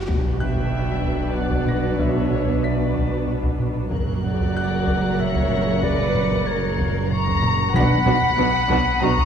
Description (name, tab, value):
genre	cinematic, suspense film score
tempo	94 BPM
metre	3/4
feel	straight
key	B harmonic minor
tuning	A4 = 441 Hz
part	deep rumbling drone	drone	0.0-9.2 s	F#1 to B1	-31 LUFS	left 1 dB	built-in reverb
part	riser and sub drop	sound effects	0.0-2.0 s	none	-27 LUFS	left 1 dB	none
part	muted studio violin section	melody	0.1-9.1 s	A#4 to B4	-32 LUFS	left 5 dB	none
part	muted symphonic viola section	accompaniment	0.1-9.1 s	C#3 to D4	-30 LUFS	right 1 dB	none
part	dark French horn section	sustained chords	0.1-8.0 s	A#2 to D4	-30 LUFS	left 4 dB	none
part	muted studio cello section	bass	0.1-9.1 s	F#2 to B2	-26 LUFS	right 4 dB	none
part	muted studio double bass section	bass	0.1-9.1 s	F#1 to B1	-27 LUFS	right 4 dB	none
part	taiko ensemble	drums	0.1-9.2 s	none	-27 LUFS	equal	none
part	timpani	percussion	0.1-1.0, 7.7-8.7 s	B2	-27 LUFS	left 1 dB	none
part	muted studio violin section	texture	0.1-9.2 s	B5 to C#7	-35 LUFS	left 3 dB	none
part	mellow clarinet	second line	0.4-9.2 s	C#5 to C#6	-26 LUFS	left 2 dB	none
part	muted studio violin section	second line	0.4-9.2 s	A#4 to A#5	-27 LUFS	equal	none
part	bright concert grand piano	texture	0.4-9.2 s	F#5 to B6	-36 LUFS	left 1 dB	none
room	moderate concert hall reverb, RT60 2.4 s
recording	none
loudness	-18 LUFS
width	side -8 dB against mid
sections	0.1-9.2 A section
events	impact 0.1-2.0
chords	0.1 Bm; 3.9 F#; 7.7 Bm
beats	| 0.08 0.72 1.36 | 2.00 2.63 3.27 | 3.91 4.55 5.19 | 5.83 6.46 7.10 | 7.74 8.38 9.02